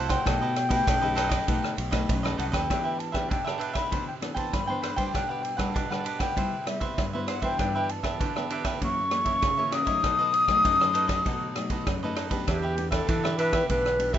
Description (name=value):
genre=samba and choro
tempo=98 BPM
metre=4/4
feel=straight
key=E minor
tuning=A4 = 440 Hz
part: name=breathy mellow jazz flute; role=melody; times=0.0-14.2 s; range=G4 to D#6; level=-27 LUFS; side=left 2 dB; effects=none
part: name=cavaquinho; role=accompaniment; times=0.0-14.2 s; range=D4 to G5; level=-33 LUFS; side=right 4 dB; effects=none
part: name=nylon-string guitar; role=accompaniment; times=0.0-14.2 s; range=F#2 to G4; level=-33 LUFS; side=left 3 dB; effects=none
part: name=modern bright fingered electric bass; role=bass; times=0.0-2.7, 12.5-14.2 s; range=B1 to E3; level=-31 LUFS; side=right 1 dB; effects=none
part: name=swinging big-band drum kit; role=drums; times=0.1-14.2 s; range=kick drum, ride cymbal, rim click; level=-30 LUFS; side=right 1 dB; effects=none
room=little or no reverb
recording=rough home demo mix, nothing above 7.8 kHz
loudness=-24 LUFS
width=side -10 dB against mid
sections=0.0-2.7 A section; 2.7-12.5 B section; 12.5-14.2 C section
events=none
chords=0.3 B7b13; 2.7 Em7; 3.9 Cmaj9; 5.1 Gmaj7/B; 6.4 Cmaj7; 7.6 G6; 8.8 F#7; 10.0 B7; 12.5 Em7